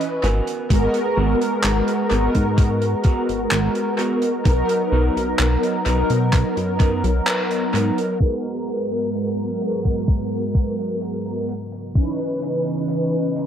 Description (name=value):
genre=vaporwave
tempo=64 BPM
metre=4/4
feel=straight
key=G# minor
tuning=A4 = 440 Hz
part: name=mellow synth brass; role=accompaniment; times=0.0-13.5 s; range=E3 to D#5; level=-21 LUFS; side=equal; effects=ensemble chorus, tape echo
part: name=mellow electric guitar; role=riff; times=0.0-8.0 s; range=B3 to G#5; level=-28 LUFS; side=right 2 dB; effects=lush chorus, vintage 12-bit sampler grit, tape echo
part: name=open jazz drum kit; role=drums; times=0.0-13.5 s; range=handclaps, hi-hat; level=-27 LUFS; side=equal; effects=low-pass filter on hats, low-pass filter on snare, low-pass filter on room, tape echo
part: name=chorused synth bass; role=bass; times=0.2-7.9 s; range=G#1 to B2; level=-20 LUFS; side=equal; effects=none
part: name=electronic kick drum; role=drums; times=0.7-12.1 s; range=none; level=-17 LUFS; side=equal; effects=none
part: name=warbly tape-like pad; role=sustained chords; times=8.9-13.5 s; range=G#2 to D#5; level=-28 LUFS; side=right 1 dB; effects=chorus, built-in reverb
room=light reverb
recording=echo-heavy mix, low-pass filter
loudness=-18 LUFS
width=side -9 dB against mid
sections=0.0-8.2 A section; 8.2-13.5 B section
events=clean electric guitar fill 0.0-0.7; kick drops out 7.3-8.2; band accent 7.3-7.7; filter sweep 8.2-13.5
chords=0.2 G#m9; 4.5 Bmaj7; 8.2 G#m9; 11.5 C#m9